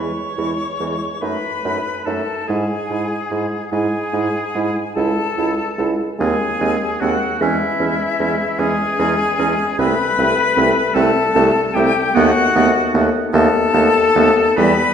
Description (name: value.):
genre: classical, slow romantic movement for wind quintet.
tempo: 50 BPM (dotted quarters).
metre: 6/8.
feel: uneven beats, rubato.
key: E major.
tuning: A4 = 441 Hz.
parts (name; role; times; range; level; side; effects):
bright concert flute; melody; 0.0-14.9 s; E5 to C#6; -22 LUFS; left 5 dB; none.
warm oboe; second line; 0.0-14.9 s; E4 to C#5; -21 LUFS; left 2 dB; none.
clear clarinet; accompaniment; 0.0-14.7 s; B3 to E4; -23 LUFS; right 5 dB; none.
mellow French horn; accompaniment; 0.0-14.7 s; G3 to A3; -23 LUFS; equal; none.
clear bassoon; bass; 0.0-14.7 s; C2 to G#2; -20 LUFS; right 1 dB; none.
room: wet recital hall reverb, RT60 1.6 s.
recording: heard from further back in the room, nothing above 10.8 kHz.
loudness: -15 LUFS.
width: side -8 dB against mid.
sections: 0.0-14.9 A section.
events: none.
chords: 0.0 E; 1.2 B7/F#; 2.5 E/G#; 5.0 C#m; 6.2 G#/D#; 7.4 C#m/E; 9.8 Am/C; 12.2 B7/D#.